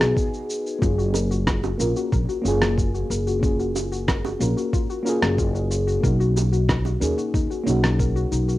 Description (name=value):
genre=sunset chillout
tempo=92 BPM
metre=4/4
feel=straight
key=F# major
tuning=A4 = 442 Hz
part: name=nylon-string guitar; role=melody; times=0.0-0.5 s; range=G#4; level=-36 LUFS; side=left 1 dB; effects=none
part: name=mellow FM electric piano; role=accompaniment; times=0.0-8.6 s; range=A#3 to D#5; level=-25 LUFS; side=equal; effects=chorus, auto-pan, cassette tape, tape echo
part: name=upright bass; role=bass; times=0.0-8.6 s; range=F#1 to D#2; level=-23 LUFS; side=equal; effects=none
part: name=electronic rim click and cabasa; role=drums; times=0.0-8.6 s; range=none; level=-27 LUFS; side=equal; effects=overdrive, cassette tape
part: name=electronic kick drum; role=drums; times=0.2-8.1 s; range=none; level=-24 LUFS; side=equal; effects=overdrive, cassette tape
part: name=soft round pluck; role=arpeggios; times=0.8-8.6 s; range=D#4 to A#4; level=-30 LUFS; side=left 6 dB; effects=chorus, cassette tape, tape echo
part: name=bongos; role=percussion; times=1.1-7.0 s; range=none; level=-31 LUFS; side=right 7 dB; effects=none
room=moderate studio reverb, RT60 0.6 s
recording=home recording on cassette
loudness=-20 LUFS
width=side -16 dB against mid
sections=0.0-8.6 A section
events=none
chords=0.0 Emaj7 (rootless); 0.8 F#maj7; 6.0 Bmaj9